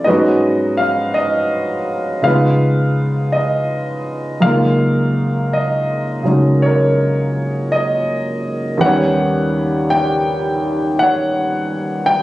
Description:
jazz ballad; 55 BPM; 4/4; swing 66% on 8ths; A4 = 441 Hz
warm concert grand piano; solo; 0.0-12.2 s; Eb2 to G5; -14 LUFS; equal
moderate echo chamber reverb, RT60 1.7 s; recorded on a phone in the room, club reverb, compression; -14 LUFS; side -16 dB against mid
0.0-12.2 A section
0.1 Abm7; 2.2 Db9; 4.4 Gbmaj13; 8.8 Eb7alt
| 0.05 1.15 2.24 3.34 | 4.43 5.52 6.62 7.71 | 8.80 9.89 10.98 12.06

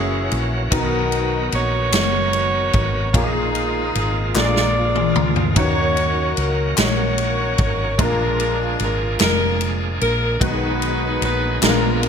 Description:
slow gospel; 50 BPM (dotted quarters); 6/8; straight; A4 = 441 Hz
mellow saxophone section; melody; 0.0-12.1 s; Db4 to D5; -22 LUFS; left 1 dB
clear grand piano; accompaniment; 0.0-12.1 s; Bb2 to Fb5; -25 LUFS; left 2 dB; ensemble chorus
bright tonewheel organ; sustained chords; 0.0-12.1 s; D3 to A#4; -27 LUFS; right 3 dB; slow rotary speaker, overdrive
hollow-body short-scale fingered electric bass; bass; 0.0-12.1 s; F1 to Eb2; -23 LUFS; equal
swinging big-band drum kit; drums; 0.3-12.1 s; kick drum, ride cymbal, snare drum, toms; -22 LUFS; equal; gated reverb
group handclap; percussion; 1.9-12.0 s; -25 LUFS; left 6 dB
light reverb; bright 1980s-style digital production; -17 LUFS; side -7 dB against mid
0.0-12.1 A section
drum fill 4.4-5.6
0.0 Gb7; 0.7 Bmaj7; 3.1 Bb7sus4; 4.4 Bb7; 5.6 Ebm7; 8.0 Bb7; 10.4 Abm7/Cb
| 0.72 1.94 | 3.15 4.36 | 5.57 6.78 | 7.99 9.20 | 10.41 11.62

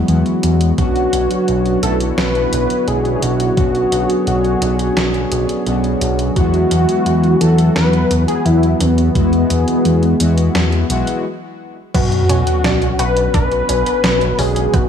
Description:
synthwave; 86 BPM; 4/4; straight; B dorian; A4 = 440 Hz
warm analog pad; sustained chords; 0.0-14.9 s; D3 to C#5; -22 LUFS; right 2 dB; chorus, sidechain pumping
analog synth brass; stabs; 0.0-11.2 s; F#3 to F#4; -21 LUFS; left 4 dB; chorus, digital delay
fat analog bass; bass; 0.0-14.9 s; B1 to E2; -17 LUFS; equal
detuned 8-bit digital drum machine; drums; 0.1-14.9 s; crash cymbal, hi-hat, snare drum; -22 LUFS; right 1 dB; gated reverb
wide unison lead; melody; 0.8-14.9 s; B3 to B4; -18 LUFS; left 1 dB; digital delay
electronic kick drum; drums; 0.8-14.9 s; -17 LUFS; equal
analog pluck; arpeggios; 11.9-14.9 s; B3 to F#4; -25 LUFS; right 1 dB; chorus, digital delay
sub drop; sound effects; 11.9-14.7 s; -22 LUFS; equal
light reverb; small room ambience; -13 LUFS; side -8 dB against mid
0.0-11.9 A section; 11.9-14.9 B section
stop 11.2-11.9; impact 11.9-14.7
0.0 Eadd9; 0.8 Bmadd9; 6.4 Eadd9; 11.9 Bmadd9
0.09 | 0.78 1.48 2.18 2.88 | 3.57 4.27 4.97 5.67 | 6.36 7.06 7.76 8.46 | 9.15 9.85 10.55 11.25 | 11.95 12.64 13.34 14.04 | 14.74

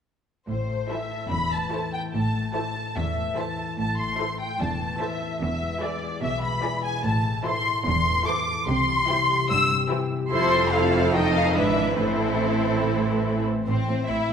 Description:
classical, dramatic, fast romantic movement for symphony orchestra; 146 BPM; 4/4; straight; A minor; A4 = 440 Hz
warm symphonic violin section; melody; 0.5-14.3 s; C5 to E6; -26 LUFS; left 1 dB
concert harp; arpeggios; 0.5-14.3 s; E2 to Eb5; -30 LUFS; left 5 dB
rich symphonic cello section; bass; 0.5-14.3 s; E2 to C3; -29 LUFS; right 2 dB
warm studio double bass section; bass; 0.5-14.3 s; E1 to C2; -32 LUFS; right 4 dB
warm symphonic violin section; second line; 0.9-14.3 s; C4 to Eb5; -28 LUFS; equal
rich symphonic viola section; accompaniment; 0.9-13.5 s; Eb3 to E4; -30 LUFS; right 1 dB
wet recital hall reverb, RT60 1.7 s; minimal, uncompressed stereo recording; -22 LUFS; side -7 dB against mid
0.5-13.7 A section
0.5 Am; 5.4 E7; 7.0 Am; 8.7 C; 10.3 Fmaj7; 11.1 F7; 11.6 E7/G#; 12.0 Am
| 0.49 0.90 1.32 1.73 | 2.14 2.56 2.97 3.38 | 3.79 4.20 4.60 5.01 | 5.42 5.82 6.23 6.64 | 7.05 7.46 7.86 8.27 | 8.68 9.09 9.50 9.91 | 10.32 10.73 11.14 11.56 | 11.98 12.41 12.83 13.26 | 13.68 14.09

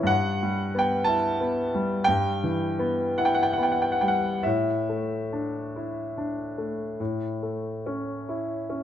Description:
classical, romantic nocturne for solo piano; 44-62 BPM; 4/4; rubato; A4 = 440 Hz
clear concert grand piano; solo; 0.0-8.8 s; G2 to A5; -24 LUFS; equal
moderate recital hall reverb, RT60 1.6 s; close, detailed microphones; -24 LUFS; side -10 dB against mid
0.0-8.8 A section
0.1 Em/G; 4.4 Asus4; 7.0 A
| 0.10 1.08 2.09 3.18 | 4.44 5.75 6.99 8.28

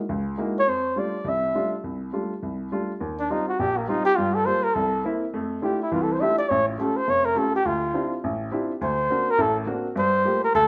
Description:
jazz; 207 BPM; 4/4; swing 62% on 8ths; F major; A4 = 437 Hz
clear upright piano; accompaniment; 0.1-10.7 s; E#1 to G4; -29 LUFS; equal
mellow flugelhorn; melody; 0.6-10.7 s; Bb3 to E5; -24 LUFS; equal; plate reverb
wet studio reverb, RT60 0.8 s; -24 LUFS; mono
0.0-3.0 A section; 3.0-10.7 B section
0.0 Gb13; 0.7 F69; 3.0 Eb69; 4.2 Gm7; 4.7 C7; 5.3 Fmaj13; 6.5 Aaug7; 7.6 Dm11; 8.8 D7b13; 10.0 Gm9
0.09 0.38 | 0.67 0.96 1.26 1.55 | 1.84 2.13 2.42 2.71 | 3.01 3.30 3.59 3.88 | 4.17 4.46 4.75 5.04 | 5.33 5.62 5.91 6.20 | 6.49 6.78 7.07 7.36 | 7.64 7.93 8.22 8.51 | 8.80 9.09 9.38 9.67 | 9.96 10.25 10.54

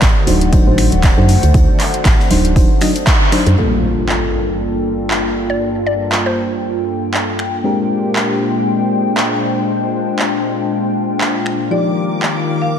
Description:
deep house; 118 BPM; 4/4; swing 56% on 16ths; G minor; A4 = 440 Hz
warm analog pad; sustained chords; 0.0-12.8 s; G2 to D6; -23 LUFS; left 1 dB; lush chorus, sidechain pumping
woody FM bass; bass; 0.0-3.6 s; D1 to F#2; -14 LUFS; equal; tube saturation, sidechain pumping
big rock drum kit; drums; 0.0-3.5 s; hi-hat, snare drum; -29 LUFS; left 2 dB; sidechain pumping on hats, high-pass filter on hats, high-pass filter on snare, high-pass filter on room
deep house drum kit; drums; 0.0-12.3 s; finger snaps, handclaps, hi-hat; -20 LUFS; right 1 dB; overdrive
electronic kick drum; drums; 0.0-3.2 s; -13 LUFS; equal; overdrive
warbly tape-like pad; texture; 0.0-12.8 s; Eb3 to G5; -20 LUFS; left 1 dB; chorus, built-in reverb, sidechain pumping
mellow FM electric piano; stabs; 0.3-12.8 s; F3 to Eb5; -20 LUFS; left 1 dB; chorus, sidechain pumping, tape echo
impact; sound effects; 3.6-5.6 s; -22 LUFS; equal
mallet-like synth pluck; melody; 5.5-7.0 s; C5 to D5; -22 LUFS; left 2 dB; chorus, tape echo
marimba with medium hard mallets; melody; 11.7-12.8 s; D5 to F5; -22 LUFS; left 1 dB
string machine, violins; texture; 11.7-12.8 s; D6; -27 LUFS; equal; ensemble chorus, sidechain pumping
moderate lush hall reverb, RT60 1.9 s, digital ambience; -13 LUFS; side -8 dB against mid
0.0-3.6 A section; 3.6-12.8 B section
band accent 3.1; impact 3.6-5.6
0.0 D7b9; 3.6 Gm9; 7.6 Bb13; 11.7 Ebmaj9
0.02 0.53 1.03 | 1.54 2.05 2.56 3.07 | 3.58 4.09 4.59 5.10 | 5.61 6.12 6.63 7.14 | 7.64 8.15 8.66 9.17 | 9.68 10.19 10.70 11.20 | 11.71 12.22 12.73

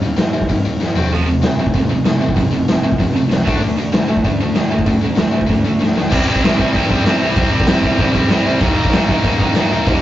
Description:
punk rock; 192 BPM; 4/4; straight; A4 = 440 Hz
tight distorted guitar; riff; 0.0-10.0 s; C3 to E4; -21 LUFS; left 4 dB; distortion
fuzz picked electric bass; bass; 0.0-10.0 s; F1 to Eb3; -25 LUFS; equal
raw garage drum kit; drums; 0.2-9.9 s; crash cymbal, hi-hat, kick drum, snare drum, toms; -15 LUFS; equal
distorted electric guitar; riff; 1.1-10.0 s; F2 to Eb4; -19 LUFS; right 3 dB; overdrive
moderate booth ambience, RT60 0.2 s; rough rehearsal-room recording, tube saturation, nothing above 7.6 kHz; -13 LUFS; side -13 dB against mid
0.0-6.1 A section; 6.1-10.0 B section
drum fill 0.8-1.1, 5.8-6.1
0.0 Eb; 1.0 F; 3.5 D5; 6.1 C; 8.6 Eb
0.19 0.50 0.81 | 1.12 1.44 1.75 2.06 | 2.37 2.69 3.00 3.31 | 3.62 3.94 4.25 4.56 | 4.88 5.19 5.50 5.81 | 6.12 6.44 6.75 7.06 | 7.37 7.69 8.00 8.31 | 8.62 8.94 9.25 9.56 | 9.87

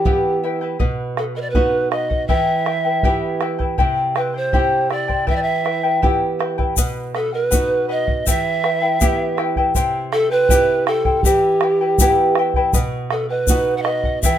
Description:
andean folk, Andean ensemble; 80 BPM; 2/4; straight; E harmonic minor; A4 = 440 Hz
breathy reedy pan flute; melody; 0.0-14.4 s; G4 to F#5; -19 LUFS; right 2 dB
charango; accompaniment; 0.0-14.4 s; E4 to G5; -22 LUFS; left 4 dB
nylon-string guitar; accompaniment; 0.0-14.4 s; B2 to G4; -24 LUFS; right 4 dB
bombo; percussion; 0.1-14.4 s; -20 LUFS; equal
egg shaker; percussion; 6.8-14.4 s; -23 LUFS; left 8 dB
light reverb; minimal, uncompressed stereo recording; -16 LUFS; side -10 dB against mid
0.0-6.8 A section; 6.8-14.4 A section
0.0 Em; 0.8 B; 2.3 Em; 3.8 C; 5.3 Em; 6.8 B; 8.3 Em; 9.8 C; 11.2 Em; 12.7 B
0.04 | 0.79 1.54 | 2.29 3.04 | 3.79 4.54 | 5.28 6.03 | 6.78 7.52 | 8.27 9.01 | 9.76 10.50 | 11.25 11.99 | 12.73 13.48 | 14.22

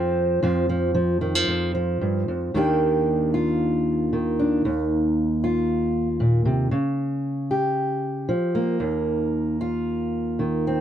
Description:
folk, solo fingerstyle acoustic guitar; 114 BPM; 4/4; straight; Eb major; A4 = 440 Hz
fingerpicked steel-string acoustic guitar; solo; 0.0-10.8 s; Eb2 to G4; -21 LUFS; equal
light reverb; dry, close 1970s-style studio recording; -21 LUFS; side -10 dB against mid
0.0-2.5 A section; 2.5-10.8 B section
0.0 F5; 2.5 Ebmaj7; 6.7 Bbm/Db; 8.8 Cm7/Eb (rootless)
| 0.42 0.94 1.47 2.00 | 2.54 3.07 3.59 4.12 | 4.64 5.16 5.68 6.20 | 6.72 7.24 7.76 8.28 | 8.80 9.33 9.86 10.39

